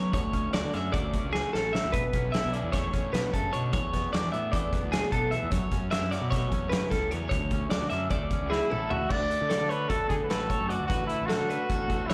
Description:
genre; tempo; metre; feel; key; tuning
math rock and midwest emo; 301 BPM (eighths); 9/8; straight; D major; A4 = 440 Hz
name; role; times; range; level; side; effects
twelve-string electric guitar; accompaniment; 0.0-12.1 s; D2 to F#4; -39 LUFS; equal; slapback echo
twelve-string electric guitar; arpeggios; 0.0-12.1 s; G#4 to E5; -34 LUFS; equal; slapback echo
fuzz fingered electric bass; bass; 0.0-12.1 s; A1 to F#3; -35 LUFS; equal; overdrive
loose indie drum kit; drums; 0.1-12.1 s; crash cymbal, hi-hat, kick drum, snare drum, toms; -34 LUFS; equal; none
warm trumpet; melody; 8.5-12.1 s; E4 to D5; -32 LUFS; equal; slapback echo
room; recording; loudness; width
light reverb, small room ambience; live gig heard through the venue's PA, club reverb; -28 LUFS; mono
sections
0.0-9.1 A section; 9.1-12.1 B section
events
drum fill 1.3-1.9, 8.5-9.1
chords
0.1 Dmaj9; 1.9 Bm11; 3.7 E7sus4; 5.5 F#m7; 7.3 Dmaj9; 9.1 Dmaj7

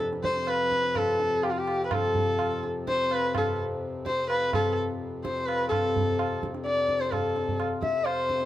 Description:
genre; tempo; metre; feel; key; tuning
indian classical, Hindustani; 127 BPM; 4/4; straight; F raga yaman; A4 = 439 Hz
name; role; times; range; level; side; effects
pedal harmonium; drone; 0.0-8.5 s; F2 to C3; -34 LUFS; left 4 dB; none
tabla; percussion; 0.0-8.5 s; none; -32 LUFS; right 2 dB; none
warm sarangi; melody; 0.2-8.5 s; F4 to E5; -26 LUFS; left 1 dB; plate reverb
room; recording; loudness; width
moderate studio reverb, RT60 0.6 s; dark, warm production; -24 LUFS; side -13 dB against mid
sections
0.0-5.7 A section; 5.7-8.5 B section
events
speeding up 0.0-8.5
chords
none

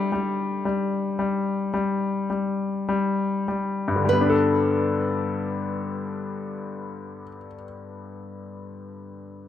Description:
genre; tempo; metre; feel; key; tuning
pop; 49-58 BPM; 4/4; straight; G major; A4 = 440 Hz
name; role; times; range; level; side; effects
nylon-string guitar; melody; 0.0-7.4 s; D4 to D5; -31 LUFS; right 4 dB; none
clear concert grand piano; accompaniment; 0.0-9.5 s; G2 to A4; -24 LUFS; left 3 dB; none
room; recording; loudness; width
light reverb, studio ambience; rough home demo mix; -22 LUFS; side -10 dB against mid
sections
0.0-4.1 A section; 4.1-8.9 B section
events
slowing down 0.0-4.1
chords
0.0 G5; 4.1 Gadd9

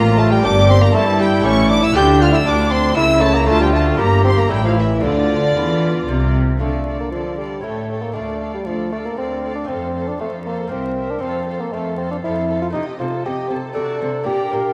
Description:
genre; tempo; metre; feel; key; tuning
classical, baroque-style concerto movement with solo episodes; 117 BPM; 3/4; straight; D minor; A4 = 438 Hz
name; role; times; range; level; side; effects
mellow bassoon; melody; 0.0-14.7 s; D3 to A4; -23 LUFS; equal; none
rich chamber violin section; second line; 0.0-14.7 s; Bb4 to G6; -30 LUFS; equal; none
lute; accompaniment; 0.0-14.7 s; D2 to D5; -30 LUFS; equal; none
rich chamber viola section; accompaniment; 0.0-14.7 s; D4 to Bb4; -27 LUFS; equal; none
rich chamber double bass section; bass; 0.0-6.6 s; G1 to G2; -22 LUFS; equal; none
warm studio cello section; bass; 0.0-14.6 s; C2 to G3; -24 LUFS; equal; none
clear chamber violin section; melody; 0.2-14.7 s; D5 to G6; -29 LUFS; equal; none
room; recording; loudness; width
wet concert hall reverb, RT60 2.0 s; vinyl crackle; -17 LUFS; mono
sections
0.0-6.6 A section; 6.6-14.7 B section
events
none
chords
0.0 Gm; 1.4 A7; 2.0 Dm; 3.0 C#m6; 3.5 Dm; 4.0 Edim/G; 4.5 A7; 5.0 Dm; 7.6 A7; 8.2 Dm; 9.7 F; 10.7 C7; 11.2 F; 12.7 Am7b5/C; 13.8 D7/C

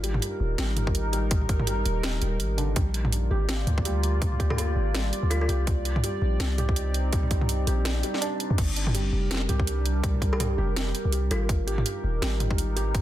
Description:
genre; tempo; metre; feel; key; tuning
half-time drum and bass; 165 BPM; 4/4; swing 58% on 16ths, half-time; unclear; A4 = 439 Hz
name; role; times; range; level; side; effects
dark analog pad; sustained chords; 0.0-13.0 s; G3 to D5; -34 LUFS; equal; chorus, phaser, sidechain pumping
felt-muted upright piano; arpeggios; 0.0-13.0 s; D3 to G4; -34 LUFS; right 1 dB; vintage 12-bit sampler grit, digital delay
long sustained 808-style bass; bass; 0.0-13.0 s; Eb1 to F2; -26 LUFS; equal; none
drum and bass drum kit; drums; 0.0-13.0 s; crash cymbal, hi-hat, snare drum, toms; -31 LUFS; right 1 dB; overdrive, studio ambience
electronic kick drum; drums; 0.9-13.0 s; none; -26 LUFS; equal; overdrive, studio ambience
kalimba; melody; 4.5-5.5, 10.3-11.5 s; F4 to G4; -36 LUFS; equal; digital delay
room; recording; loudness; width
light reverb; dense, heavily limited modern master; -23 LUFS; side -13 dB against mid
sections
0.0-13.0 A section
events
none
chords
0.0 Absus2; 2.8 Bb; 5.7 Cmadd9; 8.6 Gm; 11.5 Absus2

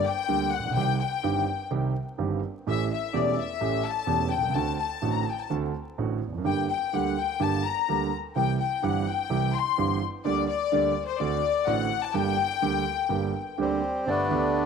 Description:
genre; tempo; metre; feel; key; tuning
tango; 126 BPM; 4/4; rubato; G harmonic minor; A4 = 440 Hz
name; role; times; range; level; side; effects
clear studio violin section; second line; 0.0-13.6 s; C5 to C6; -27 LUFS; left 10 dB; none
dark concert grand piano; accompaniment; 0.3-14.7 s; E1 to G4; -27 LUFS; right 5 dB; none
bandoneon; melody; 13.6-14.7 s; G3 to D4; -25 LUFS; left 2 dB; none
room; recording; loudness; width
moderate spring reverb, RT60 2.8 s; 1960s-style stereo, vinyl crackle; -24 LUFS; side -6 dB against mid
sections
0.0-14.1 A section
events
violin section solo 0.0-14.1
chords
0.0 Gm; 0.8 Cm; 2.7 A7; 4.5 D7; 6.5 Gm; 8.4 C; 10.2 Gm/D; 11.2 D7; 12.1 Gm; 14.1 Gadd9

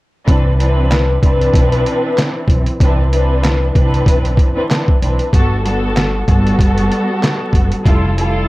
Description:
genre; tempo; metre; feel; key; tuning
hip hop, boom-bap hip-hop; 95 BPM; 4/4; swing 56% on 16ths; C major; A4 = 440 Hz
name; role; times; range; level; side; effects
muted studio string section; accompaniment; 0.3-8.5 s; E3 to B4; -17 LUFS; equal; cassette tape, high-pass filter, low-pass filter
upright bass; bass; 0.3-8.5 s; F1 to C2; -16 LUFS; equal; none
trip hop sampler-style drum kit; drums; 0.3-8.3 s; handclaps, hi-hat, kick drum, snare drum; -14 LUFS; equal; none
room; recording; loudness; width
light reverb; dark, warm production, vinyl crackle; -12 LUFS; side -19 dB against mid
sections
0.3-8.5 A section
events
none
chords
0.3 Cmaj9; 5.3 Gmaj9; 7.9 Fmaj9

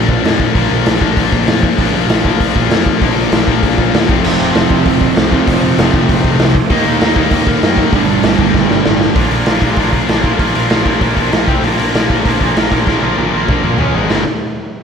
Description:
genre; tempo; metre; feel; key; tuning
punk rock; 195 BPM; 4/4; straight; unclear; A4 = 440 Hz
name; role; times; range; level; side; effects
distorted electric guitar; riff; 0.0-14.2 s; F2 to Bb4; -16 LUFS; left 10 dB; overdrive, slapback echo
fuzz guitar; riff; 0.0-9.2 s; F2 to Eb4; -17 LUFS; equal; distortion, slapback echo
fuzz picked electric bass; bass; 0.0-14.2 s; F1 to F#2; -20 LUFS; equal; overdrive
raw garage drum kit; drums; 0.1-14.2 s; crash cymbal, hi-hat, kick drum, snare drum, splash cymbal, toms; -14 LUFS; equal; none
distorted electric guitar; riff; 4.2-14.2 s; F2 to Eb4; -18 LUFS; right 11 dB; distortion, slapback echo
room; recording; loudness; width
moderate scoring stage reverb, RT60 1.6 s, studio ambience; big arena sound; -10 LUFS; side -6 dB against mid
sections
0.0-9.2 A section; 9.2-14.1 B section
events
drum fill 8.5-9.2, 12.9-14.1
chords
0.0 Bb; 4.1 F; 6.7 Eb; 7.9 Gm; 9.2 Bb; 11.5 C5; 11.6 Bb; 13.8 C#5; 13.9 Ab5; 14.1 Gm

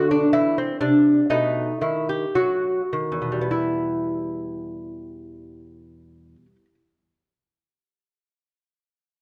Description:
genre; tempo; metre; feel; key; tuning
classical, baroque-style dance for lute; 50-66 BPM; 4/4; rubato; E minor; A4 = 440 Hz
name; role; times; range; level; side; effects
lute; solo; 0.0-6.7 s; E2 to G4; -23 LUFS; equal; none
room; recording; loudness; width
moderate recital hall reverb, RT60 1.4 s; dark, warm production; -22 LUFS; mono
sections
0.0-3.5 A section; 3.5-8.2 B section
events
slowing down 0.0-3.5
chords
0.0 E5; 1.3 B7; 3.5 Em

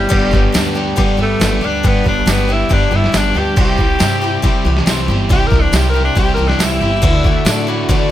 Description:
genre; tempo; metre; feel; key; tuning
folk rock and heartland rock; 139 BPM; 4/4; straight; G major; A4 = 440 Hz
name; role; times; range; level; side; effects
bright tenor saxophone; melody; 0.0-7.9 s; G3 to Bb4; -19 LUFS; left 1 dB; none
picked swing-style acoustic guitar; accompaniment; 0.0-8.1 s; G2 to D5; -22 LUFS; left 4 dB; none
mellow tonewheel organ; sustained chords; 0.0-8.1 s; G3 to G4; -26 LUFS; right 1 dB; none
crunchy overdriven guitar; riff; 0.0-8.1 s; G2 to G4; -20 LUFS; right 1 dB; none
upright bass; bass; 0.0-8.1 s; G1 to D3; -18 LUFS; equal; none
lo-fi sampler-style drum kit; drums; 0.1-8.0 s; crash cymbal, hi-hat, kick drum, snare drum; -16 LUFS; equal; none
tambourine; percussion; 0.5-7.6 s; none; -26 LUFS; right 10 dB; none
room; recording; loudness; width
light reverb; none; -12 LUFS; side -12 dB against mid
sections
0.0-8.1 A section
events
tenor saxophone solo 0.0-8.1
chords
0.1 G; 3.6 C; 7.0 Dadd9

